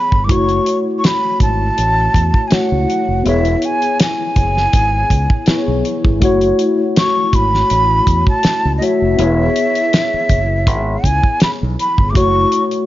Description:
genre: lush 1970s-style soul.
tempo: 81 BPM.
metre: 4/4.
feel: swing 54% on 16ths.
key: F# minor.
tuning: A4 = 440 Hz.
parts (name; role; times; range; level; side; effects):
breathy jazz flute; melody; 0.0-12.6 s; D#5 to D6; -17 LUFS; equal; none.
barky tine electric piano; accompaniment; 0.0-12.9 s; A3 to C#5; -18 LUFS; left 2 dB; overdrive, ensemble chorus.
fingered electric bass; bass; 0.1-12.4 s; E1 to E2; -18 LUFS; equal; none.
damped 70s drum kit; drums; 0.1-12.9 s; hi-hat, kick drum, snare drum; -16 LUFS; equal; none.
room: light reverb, small room ambience.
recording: nothing above 7.5 kHz.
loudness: -12 LUFS.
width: side -14 dB against mid.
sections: 0.0-12.9 A section.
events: none.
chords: 0.3 F#m7; 3.3 C#m7/E; 6.2 F#m7; 9.2 C#m7/E; 12.1 F#m7.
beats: | 0.29 1.03 1.77 2.52 | 3.26 4.00 4.74 5.48 | 6.22 6.96 7.70 8.45 | 9.19 9.93 10.67 11.41 | 12.15.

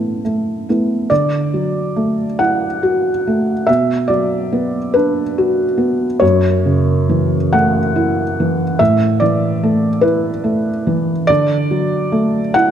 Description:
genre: neoclassical minimalist piano.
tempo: 47 BPM (dotted quarters).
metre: 6/8.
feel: rubato.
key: D major.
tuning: A4 = 440 Hz.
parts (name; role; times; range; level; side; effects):
felt-muted upright piano; solo; 0.0-12.7 s; F#2 to F#5; -14 LUFS; equal; none.
room: moderate concert hall reverb, RT60 2.0 s.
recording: none.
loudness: -14 LUFS.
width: side -9 dB against mid.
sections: 0.0-1.1 A section; 1.1-12.7 B section.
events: none.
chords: 0.0 Asus2; 1.1 Dadd9; 3.7 Bm; 6.2 F#m7; 8.8 Asus2; 11.3 D.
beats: | 1.10 2.40 | 3.68 4.95 | 6.22 7.54 | 8.80 10.04 | 11.29 12.55.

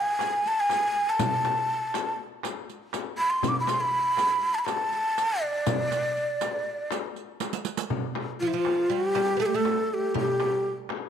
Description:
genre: Turkish makam ensemble.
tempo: 241 BPM (eighths).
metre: 9/8.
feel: straight.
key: D makam nikriz.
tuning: A4 = 441 Hz.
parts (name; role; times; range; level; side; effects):
breathy mellow ney; melody; 0.0-10.7 s; E4 to D6; -25 LUFS; equal; none.
darbuka; percussion; 0.2-11.0 s; none; -36 LUFS; right 9 dB; none.
frame drum; percussion; 0.2-11.0 s; none; -34 LUFS; left 11 dB; none.
riq; percussion; 0.2-7.9 s; none; -36 LUFS; right 12 dB; none.
oud; second line; 8.4-10.7 s; F3 to B3; -31 LUFS; right 9 dB; none.
room: moderate echo chamber reverb, RT60 1.6 s, studio reverb.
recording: 1960s-style stereo with parts hard left and right.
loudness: -24 LUFS.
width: side -8 dB against mid.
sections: 0.0-7.9 A section; 7.9-11.1 B section.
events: drum fill 7.4-7.9.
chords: none.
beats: 0.20 0.45 0.70 0.95 | 1.20 1.45 1.69 1.94 2.19 2.44 2.69 2.94 3.19 | 3.44 3.68 3.93 4.18 4.43 4.68 4.93 5.18 5.42 | 5.67 5.92 6.17 6.42 6.67 6.92 7.17 7.42 7.67 | 7.92 8.16 8.41 8.66 8.91 9.16 9.41 9.66 9.91 | 10.16 10.41 10.66 10.91.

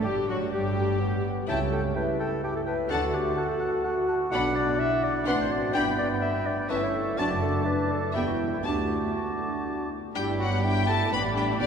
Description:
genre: quick classical-period movement for symphony orchestra.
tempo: 125 BPM.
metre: 3/4.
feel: rubato.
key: D major, G major from 4.3 s.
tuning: A4 = 440 Hz.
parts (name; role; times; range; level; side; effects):
warm chamber violin section; melody; 0.0-11.7 s; F#4 to C6; -36 LUFS; left 5 dB; none.
mellow hollow silver concert flute; second line; 0.0-11.7 s; F#4 to D6; -37 LUFS; left 1 dB; none.
warm chamber violin section; second line; 0.0-11.7 s; D4 to A5; -38 LUFS; left 3 dB; none.
warm clarinet; second line; 0.0-11.7 s; D4 to G5; -31 LUFS; left 2 dB; none.
warm oboe; second line; 0.0-11.7 s; F#4 to B5; -36 LUFS; equal; none.
mellow bassoon; accompaniment; 0.0-11.7 s; B3 to F#4; -32 LUFS; right 2 dB; none.
warm chamber viola section; accompaniment; 0.0-11.7 s; F#3 to E4; -36 LUFS; right 1 dB; none.
mellow French horn section; sustained chords; 0.0-11.7 s; D3 to G4; -33 LUFS; left 2 dB; none.
dark chamber cello section; bass; 0.0-11.7 s; D2 to D3; -34 LUFS; right 2 dB; none.
warm chamber double bass section; bass; 0.0-11.7 s; E1 to D2; -33 LUFS; right 2 dB; none.
room: wet cathedral reverb, RT60 5.7 s.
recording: recorded in a church or concert hall.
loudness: -24 LUFS.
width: side -7 dB against mid.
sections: 0.0-10.1 A section; 10.1-11.7 B section.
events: none.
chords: 0.0 Gmaj7/F#; 1.5 A7/C#; 2.9 D; 4.3 Bm; 5.3 D7/A; 5.7 G; 6.7 A7/G; 7.2 D/F#; 8.1 Em; 8.7 D; 10.1 G.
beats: | 0.04 0.53 1.00 | 1.48 1.96 2.43 | 2.90 3.37 3.85 | 4.32 4.79 5.26 | 5.74 6.21 6.70 | 7.18 7.66 8.15 | 8.65 9.15 9.65 | 10.15 10.63 11.11 | 11.59.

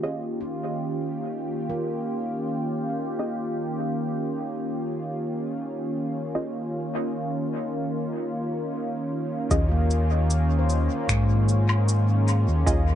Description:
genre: ambient dub.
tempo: 76 BPM.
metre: 4/4.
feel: straight.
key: Eb mixolydian.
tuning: A4 = 440 Hz.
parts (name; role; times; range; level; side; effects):
warm analog pad; sustained chords; 0.0-13.0 s; Eb3 to Ab4; -28 LUFS; equal; chorus.
filtered dub chord stab; stabs; 0.0-12.8 s; Db4 to Eb5; -33 LUFS; right 1 dB; chorus, dub echo.
handpan; arpeggios; 0.4-13.0 s; Bb3 to C5; -35 LUFS; equal; dub echo.
overdriven fingered electric bass; bass; 9.5-13.0 s; Eb2 to Ab2; -21 LUFS; equal; none.
electronic kick drum; drums; 9.5-12.8 s; none; -27 LUFS; equal; none.
electronic shaker, finger snaps and woodblock; drums; 9.5-12.8 s; none; -31 LUFS; left 2 dB; dub echo.
room: light reverb.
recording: echo-heavy mix, nothing above 10.7 kHz.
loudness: -24 LUFS.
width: side -10 dB against mid.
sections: 0.0-9.5 A section; 9.5-13.0 B section.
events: filter sweep on synth stab 0.0-9.5; filter sweep on handpan 0.0-9.5.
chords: 0.0 Eb7sus2; 9.5 Eb9sus4.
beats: | 0.04 0.83 1.62 2.41 | 3.20 3.99 4.78 5.57 | 6.36 7.14 7.93 8.72 | 9.51 10.30 11.09 11.88 | 12.67.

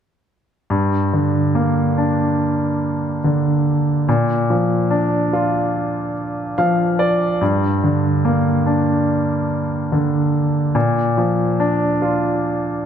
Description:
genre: pop.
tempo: 72 BPM.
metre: 4/4.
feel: straight.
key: G minor.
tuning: A4 = 440 Hz.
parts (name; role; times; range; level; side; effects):
clear concert grand piano; accompaniment; 0.7-12.9 s; G2 to F5; -16 LUFS; equal; none.
room: wet concert hall reverb, RT60 2.1 s.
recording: none.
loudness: -16 LUFS.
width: side -8 dB against mid.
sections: 0.7-12.9 A section.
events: grand piano fill 6.2-7.4.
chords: 0.7 Gm; 4.1 Bb; 7.4 Gm; 10.8 Bb.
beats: | 0.70 1.55 2.39 3.23 | 4.07 4.91 5.74 6.58 | 7.41 8.25 9.08 9.91 | 10.75 11.60 12.44.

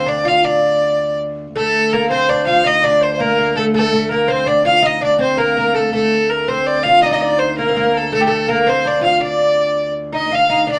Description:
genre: medieval dance.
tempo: 110 BPM (dotted quarters).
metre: 6/8.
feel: straight.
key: D phrygian.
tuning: A4 = 441 Hz.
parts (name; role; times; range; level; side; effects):
rich fiddle; melody; 0.0-10.8 s; G4 to F5; -18 LUFS; equal; none.
oud; second line; 0.0-10.8 s; A3 to F4; -22 LUFS; equal; none.
rich viola da gamba; drone; 0.0-10.8 s; D2; -30 LUFS; equal; none.
tenor recorder; second line; 1.6-10.8 s; A4 to F5; -24 LUFS; equal; none.
room: wet club reverb, RT60 0.6 s.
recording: none.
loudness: -15 LUFS.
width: mono.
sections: 0.0-1.5 A section; 1.5-10.3 A section.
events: none.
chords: none.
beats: | 0.45 1.00 | 1.55 2.10 | 2.65 3.19 | 3.74 4.29 | 4.84 5.39 | 5.93 6.48 | 7.03 7.58 | 8.12 8.67 | 9.22 9.76 | 10.31.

